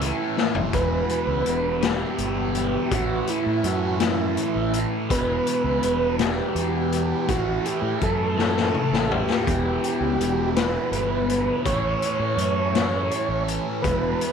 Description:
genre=psychedelic rock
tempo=55 BPM (dotted quarters)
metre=6/8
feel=straight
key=E dorian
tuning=A4 = 440 Hz
part: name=clear symphonic string section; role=sustained chords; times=0.0-14.3 s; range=E3 to E4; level=-35 LUFS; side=right 12 dB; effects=none
part: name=fuzz guitar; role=riff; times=0.0-14.3 s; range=E2 to A3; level=-26 LUFS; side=left 1 dB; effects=distortion, phaser
part: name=fuzz fingered electric bass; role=bass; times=0.0-14.1 s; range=E1 to A2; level=-28 LUFS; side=equal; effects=overdrive
part: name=raw garage drum kit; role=drums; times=0.0-14.3 s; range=hi-hat, kick drum, snare drum, toms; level=-26 LUFS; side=left 6 dB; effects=none
part: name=overdriven combo organ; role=melody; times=0.7-14.3 s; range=E4 to C#5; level=-26 LUFS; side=right 2 dB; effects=slapback echo
room=light reverb, small room ambience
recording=1960s-style stereo with parts hard left and right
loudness=-21 LUFS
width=side -7 dB against mid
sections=0.7-14.3 A section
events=drum fill 0.4-0.7, 8.4-9.5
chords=0.0 A; 0.7 Em; 2.9 A; 5.1 Em; 7.3 A; 9.5 Em; 11.7 A

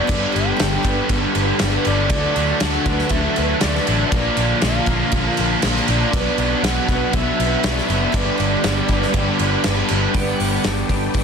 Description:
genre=rock, shoegaze and dream pop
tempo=119 BPM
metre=4/4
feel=straight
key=unclear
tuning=A4 = 440 Hz
part: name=breathy flute-like synth lead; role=melody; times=0.0-9.7 s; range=D5 to G5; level=-27 LUFS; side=equal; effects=chorus, tremolo, analog delay
part: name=ensemble organ-string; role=sustained chords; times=0.0-11.2 s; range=B4 to D6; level=-31 LUFS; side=equal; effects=none
part: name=picked twelve-string acoustic guitar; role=arpeggios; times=0.0-11.2 s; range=F4 to B4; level=-29 LUFS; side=right 4 dB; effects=analog chorus, analog delay
part: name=clean electric guitar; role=riff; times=0.0-11.2 s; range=G2 to G4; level=-27 LUFS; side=right 9 dB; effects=reverse reverb
part: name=overdriven semi-hollow guitar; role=riff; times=0.0-11.2 s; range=G2 to D4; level=-24 LUFS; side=left 12 dB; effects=wide subtle chorus
part: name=tight distorted guitar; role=riff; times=0.0-10.6 s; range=G2 to D4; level=-25 LUFS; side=equal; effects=distortion
part: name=vintage muted picked electric bass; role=bass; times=0.1-11.2 s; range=F#1 to D2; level=-23 LUFS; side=equal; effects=none
part: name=loose indie drum kit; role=drums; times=0.1-11.2 s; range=crash cymbal, hi-hat, kick drum, snare drum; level=-21 LUFS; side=right 1 dB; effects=none
room=light reverb, studio reverb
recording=dense, heavily limited modern master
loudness=-16 LUFS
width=side -6 dB against mid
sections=0.0-10.2 A section; 10.2-11.2 B section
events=none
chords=0.1 G; 2.1 Dmaj7; 4.1 Bbmaj7; 6.1 Bm; 8.1 G

